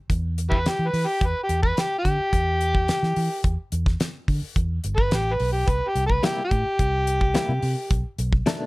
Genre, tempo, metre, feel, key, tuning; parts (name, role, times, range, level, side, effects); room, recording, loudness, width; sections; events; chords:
straight-eighth soul blues; 108 BPM; 4/4; straight; E minor; A4 = 440 Hz
vintage muted fingered electric bass; bass; 0.1-8.4 s; G1 to E3; -25 LUFS; equal
damped 70s drum kit; drums; 0.1-8.6 s; hi-hat, kick drum, snare drum; -24 LUFS; equal
overdriven harmonica; melody; 0.5-8.1 s; E4 to B4; -24 LUFS; equal
direct-recorded clean electric guitar; stabs; 6.2-8.6 s; B2 to E4; -26 LUFS; left 3 dB; tremolo, slapback echo
little or no reverb; -21 LUFS; side -22 dB against mid
0.0-8.7 A section
harmonica solo 0.0-8.7
0.0 Em; 5.7 C7; 7.9 B7#9